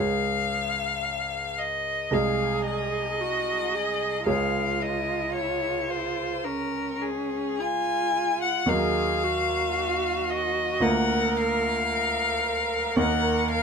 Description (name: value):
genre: classical, slow romantic movement for piano trio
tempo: 56 BPM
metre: 4/4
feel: rubato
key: Db major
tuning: A4 = 438 Hz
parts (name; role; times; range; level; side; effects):
- rich violin; melody; 0.0-13.6 s; Ab4 to Ab5; -26 LUFS; left 5 dB; none
- bright concert grand piano; accompaniment; 0.0-13.6 s; C2 to Eb5; -29 LUFS; right 1 dB; none
- rich cello; second line; 2.1-13.6 s; Db4 to Bb4; -29 LUFS; right 6 dB; none
room: little or no reverb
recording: close, detailed microphones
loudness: -23 LUFS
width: side -6 dB against mid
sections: 0.0-13.6 A section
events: none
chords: 0.0 Db; 2.1 Ab/C; 4.3 Db; 8.7 Ebm; 10.8 Bb/D; 13.0 Eb5